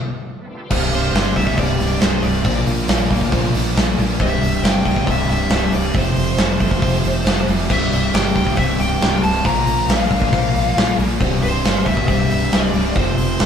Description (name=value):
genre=classic rock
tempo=137 BPM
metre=4/4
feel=straight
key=C mixolydian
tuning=A4 = 438 Hz
part: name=bright tonewheel organ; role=sustained chords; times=0.4-13.5 s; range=G3 to F5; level=-33 LUFS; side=left 1 dB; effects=none
part: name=crunchy overdriven guitar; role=riff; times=0.7-13.5 s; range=C2 to Bb3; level=-25 LUFS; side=left 6 dB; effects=none
part: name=distorted electric guitar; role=riff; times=0.7-13.5 s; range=C2 to Bb3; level=-24 LUFS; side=right 6 dB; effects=distortion
part: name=overdriven picked electric bass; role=bass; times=0.7-13.5 s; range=C1 to Bb1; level=-23 LUFS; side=equal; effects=none
part: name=big rock drum kit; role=drums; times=0.7-13.5 s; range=crash cymbal, hi-hat, kick drum, snare drum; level=-18 LUFS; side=equal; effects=none
part: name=cowbell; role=percussion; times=0.7-13.5 s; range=none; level=-33 LUFS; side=left 8 dB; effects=none
part: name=bluesy overdriven lead guitar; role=melody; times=1.0-13.5 s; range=C5 to Bb5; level=-23 LUFS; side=left 1 dB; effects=distortion
room=light reverb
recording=band playing live in one room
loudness=-15 LUFS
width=side -8 dB against mid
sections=0.7-13.5 A section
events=stop 0.0-0.7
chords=0.0 G5; 0.7 C; 2.5 Bb; 4.2 C; 6.0 Fadd9; 7.7 C; 9.5 Bb; 11.2 C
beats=0.28 | 0.71 1.15 1.59 2.02 | 2.46 2.90 3.33 3.77 | 4.20 4.64 5.08 5.51 | 5.95 6.39 6.83 7.26 | 7.70 8.14 8.58 9.02 | 9.45 9.89 10.33 10.77 | 11.21 11.64 12.08 12.52 | 12.96 13.40